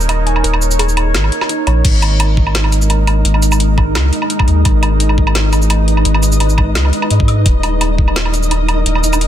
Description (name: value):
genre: half-time drum and bass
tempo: 171 BPM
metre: 4/4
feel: swing 53% on 16ths, half-time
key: G# minor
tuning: A4 = 439 Hz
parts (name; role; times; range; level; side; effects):
- deep dark ambient pad; sustained chords; 0.0-9.3 s; G#3 to D#5; -19 LUFS; right 1 dB; chorus, built-in reverb, vintage 12-bit sampler grit, sidechain pumping
- saturated sub bass; bass; 0.0-9.3 s; D#1 to G#2; -13 LUFS; equal; none
- drum and bass drum kit; drums; 0.0-9.3 s; crash cymbal, hi-hat, shaker, snare drum, woodblock; -18 LUFS; equal; none
- warbly dusty pluck; arpeggios; 0.1-1.8 s; D#4 to G#5; -24 LUFS; right 1 dB; chorus, cassette tape, digital delay
- electronic kick drum; drums; 1.8-8.1 s; none; -13 LUFS; equal; none
- flickering grainy texture; texture; 2.2-9.3 s; D#4 to D#5; -24 LUFS; left 1 dB; built-in reverb
room: digital ambience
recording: dense, heavily limited modern master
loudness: -11 LUFS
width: side -11 dB against mid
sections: 0.0-1.8 A section; 1.8-9.3 A section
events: drop 0.0-1.8, 1.8-9.3; kick drops out 0.4-1.8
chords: 0.0 D#5; 1.8 G#m; 7.5 D#5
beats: 0.09 | 0.44 0.79 1.14 1.49 | 1.84 2.19 2.55 2.90 | 3.25 3.60 3.95 4.30 | 4.65 5.00 5.35 5.70 | 6.05 6.41 6.76 7.11 | 7.46 7.81 8.16 8.51 | 8.86 9.21